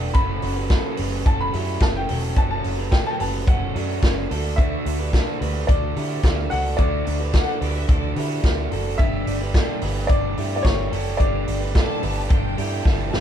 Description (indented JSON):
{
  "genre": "jangly indie pop",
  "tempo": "109 BPM",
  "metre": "4/4",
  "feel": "straight",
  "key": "D major",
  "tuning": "A4 = 441 Hz",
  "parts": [
    { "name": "crunchy overdriven guitar", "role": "accompaniment", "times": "0.0-13.2 s", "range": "F#2 to G4", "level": "-29 LUFS", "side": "right 5 dB", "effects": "none" },
    { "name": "electric guitar through a small old amp", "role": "arpeggios", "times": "0.0-13.2 s", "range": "C#4 to B4", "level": "-31 LUFS", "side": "left 1 dB", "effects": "none" },
    { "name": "vintage muted picked electric bass", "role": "bass", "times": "0.0-13.2 s", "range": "E1 to D3", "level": "-26 LUFS", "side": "right 1 dB", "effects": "none" },
    { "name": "clear upright piano", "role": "melody", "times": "0.1-12.8 s", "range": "C#5 to B5", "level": "-29 LUFS", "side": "left 2 dB", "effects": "none" },
    { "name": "vintage drum kit", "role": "drums", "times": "0.1-13.2 s", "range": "hi-hat, kick drum, ride cymbal, snare drum", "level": "-21 LUFS", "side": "equal", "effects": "none" },
    { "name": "warm studio violin section", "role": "second line", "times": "7.3-13.2 s", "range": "A4 to A5", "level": "-33 LUFS", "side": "left 4 dB", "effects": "none" }
  ],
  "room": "light reverb",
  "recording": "band playing live in one room",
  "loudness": "-19 LUFS",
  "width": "side -9 dB against mid",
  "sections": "0.0-13.2 A section",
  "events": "drum fill 12.9-13.2",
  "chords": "0.2 F#m; 4.3 D"
}